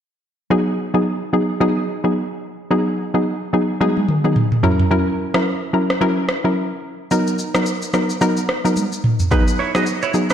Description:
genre	afrobeats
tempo	109 BPM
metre	4/4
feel	swing 58% on 16ths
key	G# minor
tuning	A4 = 440 Hz
part	hollow square pluck	accompaniment	0.5-10.3 s	F#3 to A#4	-18 LUFS	equal	chorus
part	afro-pop drum kit	drums	3.8-10.3 s	kick drum, rim click, shaker, toms	-20 LUFS	equal	overdrive, vintage 12-bit sampler grit
part	direct-recorded clean electric guitar	riff	9.3-10.3 s	D#4 to D#5	-21 LUFS	right 5 dB	lush chorus, tape echo
room	moderate lush hall reverb, RT60 1.8 s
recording	dreamy mix soaked in reverb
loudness	-16 LUFS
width	side -9 dB against mid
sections	0.5-9.3 A section; 9.3-10.3 B section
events	drum fill 3.8-4.9, 8.8-9.3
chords	0.5 G#m7; 4.6 F#7; 7.1 Bmaj7; 9.3 G#m7

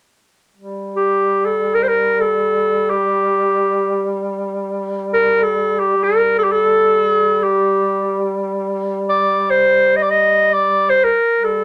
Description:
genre	turkish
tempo	free time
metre	none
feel	none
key	G makam ussak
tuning	A4 = 440 Hz
part	mellow duduk	drone	0.6-11.6 s	G3	-26 LUFS	equal	none
part	warm clarinet	melody	1.0-11.6 s	G4 to Eb5	-16 LUFS	equal	none
room	moderate studio ambience, RT60 0.5 s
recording	none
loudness	-16 LUFS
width	mono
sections	0.6-11.6 A section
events	none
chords	none

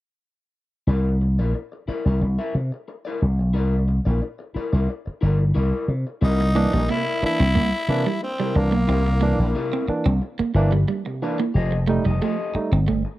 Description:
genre	funk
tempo	90 BPM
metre	4/4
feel	straight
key	C mixolydian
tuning	A4 = 440 Hz
part	electric guitar through a small old amp	accompaniment	0.9-13.1 s	E4 to E5	-30 LUFS	left 4 dB	none
part	slap bass with an envelope filter	bass	0.9-13.0 s	F1 to C3	-19 LUFS	equal	none
part	growling tenor saxophone	melody	6.2-9.9 s	Bb3 to E4	-25 LUFS	left 1 dB	none
part	barky tine electric piano	stabs	6.2-12.8 s	C3 to Eb4	-27 LUFS	right 2 dB	none
part	electric guitar at the edge of break-up	riff	6.4-13.0 s	G3 to C4	-26 LUFS	right 6 dB	none
room	digital ambience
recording	dry, close 1970s-style studio recording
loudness	-19 LUFS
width	side -16 dB against mid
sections	0.9-6.2 A section; 6.2-13.2 B section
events	none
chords	0.9 C9; 11.6 F9

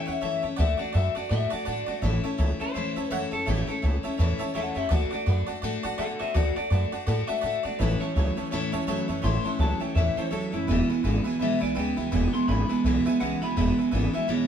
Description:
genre	rockabilly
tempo	166 BPM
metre	4/4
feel	swing 59% on 8ths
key	A major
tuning	A4 = 440 Hz
part	electric guitar through a small old amp	melody	0.0-14.5 s	E4 to C6	-31 LUFS	left 3 dB	none
part	picked steel-string acoustic guitar	accompaniment	0.0-14.5 s	E2 to F#4	-31 LUFS	left 4 dB	none
part	upright bass	bass	0.0-14.4 s	E1 to B2	-26 LUFS	equal	none
part	tack piano	accompaniment	0.1-14.4 s	B4 to B5	-35 LUFS	right 5 dB	none
part	electric guitar through a small old amp	riff	7.8-14.5 s	E2 to F#3	-27 LUFS	right 4 dB	none
room	moderate studio reverb, RT60 0.7 s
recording	band playing live in one room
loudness	-24 LUFS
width	side -8 dB against mid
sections	0.0-14.5 A section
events	clean electric guitar solo 0.0-14.5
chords	0.0 A; 0.6 D; 2.0 A; 4.9 D; 7.8 A; 10.7 E

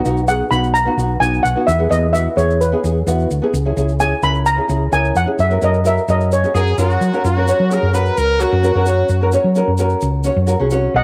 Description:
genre	calypso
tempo	130 BPM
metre	4/4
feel	straight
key	unclear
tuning	A4 = 440 Hz
part	nylon-string guitar	accompaniment	0.0-10.9 s	B3 to C#5	-21 LUFS	equal	cassette tape
part	hollow-body short-scale fingered electric bass	bass	0.1-11.0 s	B1 to F#3	-20 LUFS	equal	none
part	egg shaker	percussion	0.1-10.8 s	none	-38 LUFS	equal	none
part	steel pan	melody	0.3-6.4, 11.0 s	B4 to B5	-20 LUFS	equal	cassette tape
part	brilliant horn section	second line	6.5-9.3 s	F#4 to B4	-22 LUFS	equal	cassette tape
room	moderate spring reverb, RT60 2.1 s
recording	home recording on cassette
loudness	-16 LUFS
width	mono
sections	0.0-7.2 A section; 7.2-10.9 B section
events	steel pan solo 0.0-7.2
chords	0.0 B; 1.7 E; 3.5 C#m; 5.4 F#

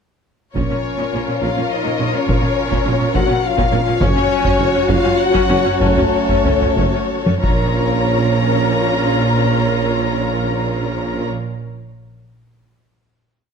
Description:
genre	cinematic, epic orchestral film score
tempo	88-105 BPM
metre	3/4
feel	straight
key	Bb harmonic minor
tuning	A4 = 442 Hz
part	warm symphonic violin section	second line	0.5-11.3 s	Bb4 to Db5	-23 LUFS	left 6 dB	none
part	warm symphonic double bass section	bass	0.5-11.3 s	Gb1 to Bb1	-25 LUFS	right 4 dB	none
part	warm symphonic violin section	melody	0.6-11.3 s	A4 to Bb5	-23 LUFS	left 4 dB	none
part	rich symphonic viola section	accompaniment	0.6-11.3 s	Db4 to Gb4	-23 LUFS	right 1 dB	none
part	warm French horn section	sustained chords	0.6-11.3 s	A3 to Gb4	-23 LUFS	left 6 dB	none
part	warm trombone section	sustained chords	0.6-11.3 s	F3 to Db4	-25 LUFS	right 5 dB	none
part	warm symphonic cello section	bass	0.6-11.3 s	Gb2 to Bb2	-24 LUFS	right 3 dB	none
part	warm tuba	bass	0.6-11.3 s	Gb1 to Bb1	-24 LUFS	right 4 dB	none
part	solo taiko drums	drums	0.6-8.8 s	none	-21 LUFS	left 1 dB	none
room	moderate recital hall reverb, RT60 1.5 s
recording	dark, warm production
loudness	-14 LUFS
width	side -6 dB against mid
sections	0.6-7.8 theme; 7.8-11.8 final hit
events	slowing down 3.2-7.8; drum fill 7.3-7.8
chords	0.6 Bbm; 4.0 Gbm; 7.4 Bbm

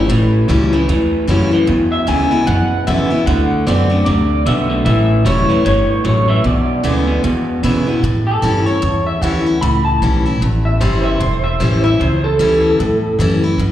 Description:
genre	rockabilly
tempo	151 BPM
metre	4/4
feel	swing 59% on 8ths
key	A mixolydian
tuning	A4 = 440 Hz
part	picked steel-string acoustic guitar	accompaniment	0.0-13.7 s	E2 to F#4	-18 LUFS	left 2 dB	slapback echo
part	electric guitar through a small old amp	riff	0.0-8.0 s	E2 to B3	-17 LUFS	right 1 dB	spring reverb
part	upright bass	bass	0.0-13.7 s	E1 to B2	-17 LUFS	equal	none
part	electric guitar through a small old amp	melody	1.9-13.4 s	A4 to B5	-19 LUFS	equal	analog chorus, slapback echo, tape echo
room	little or no reverb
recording	live gig heard through the venue's PA, recital hall reverb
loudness	-12 LUFS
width	side -12 dB against mid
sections	0.0-8.0 A section; 8.0-13.7 B section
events	clean electric guitar solo 8.0-13.7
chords	0.0 A7; 1.7 E7; 3.3 D7; 4.9 A7; 6.4 E7; 8.0 A7

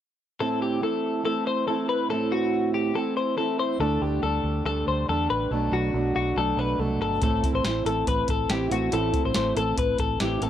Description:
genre	jangly indie pop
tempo	141 BPM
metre	4/4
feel	straight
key	A dorian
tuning	A4 = 440 Hz
part	fingerpicked plugged-in steel-string acoustic guitar	accompaniment	0.4-10.5 s	A2 to E4	-27 LUFS	right 5 dB	none
part	twelve-string electric guitar	arpeggios	0.4-10.5 s	F#4 to C5	-26 LUFS	left 5 dB	wide subtle chorus, analog delay
part	vintage muted fingered electric bass	bass	3.8-10.5 s	G1 to E2	-29 LUFS	equal	none
part	soft vintage rhythm box	drums	7.2-10.5 s	hi-hat, kick drum, snare drum	-28 LUFS	equal	none
room	light reverb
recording	none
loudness	-23 LUFS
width	side -10 dB against mid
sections	0.4-7.2 A section; 7.2-10.5 B section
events	none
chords	0.4 Am; 3.8 Dsus4; 5.5 Bm7; 7.2 Am

